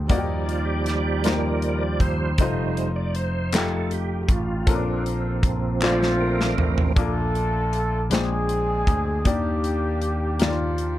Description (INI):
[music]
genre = slow gospel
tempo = 52 BPM (dotted quarters)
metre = 6/8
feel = straight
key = Bb major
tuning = A4 = 440 Hz
[part]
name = clear grand piano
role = accompaniment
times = 0.0-11.0 s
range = Bb2 to G5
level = -29 LUFS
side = left 4 dB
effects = none
[part]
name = vintage slap bass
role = bass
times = 0.0-11.0 s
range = F1 to Eb2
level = -25 LUFS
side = equal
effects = none
[part]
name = bright tonewheel organ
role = sustained chords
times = 0.1-6.9 s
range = F3 to D5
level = -27 LUFS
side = right 4 dB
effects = slow rotary speaker, chorus vibrato
[part]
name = modern studio drum kit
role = drums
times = 0.1-11.0 s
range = hi-hat, kick drum, snare drum, toms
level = -24 LUFS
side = equal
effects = none
[part]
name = group handclap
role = percussion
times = 3.5-6.2 s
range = none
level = -29 LUFS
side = left 2 dB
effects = none
[part]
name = mellow horn section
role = melody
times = 5.8-11.0 s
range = F3 to A4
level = -26 LUFS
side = equal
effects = none
[sound]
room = little or no reverb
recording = dark, warm production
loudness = -20 LUFS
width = side -14 dB against mid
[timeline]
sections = 0.0-7.0 A section; 7.0-11.0 B section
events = tonewheel organ solo 0.0-7.0; drum fill 5.8-7.0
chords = 0.1 Ebmaj7; 2.4 F7; 4.7 Bbmaj7; 8.1 Bb13; 9.2 Ebmaj7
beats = | 0.10 1.24 | 2.38 3.53 | 4.67 5.82 | 6.96 8.11 | 9.25 10.39